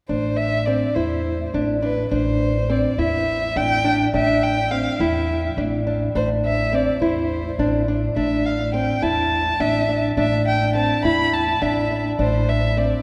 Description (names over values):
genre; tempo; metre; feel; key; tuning
contemporary instrumental, chamber music in an uneven meter; 208 BPM (eighths); 7/8; straight; A minor; A4 = 440 Hz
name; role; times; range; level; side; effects
dark violin; melody; 0.1-13.0 s; B4 to B5; -25 LUFS; equal; none
nylon-string guitar; arpeggios; 0.1-13.0 s; C4 to E4; -24 LUFS; equal; none
upright bass; bass; 0.1-12.9 s; A1 to E2; -26 LUFS; equal; none
room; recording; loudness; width
wet cathedral reverb, RT60 5.5 s; recorded in a church or concert hall; -21 LUFS; mono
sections
0.1-13.0 A section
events
none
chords
0.1 Am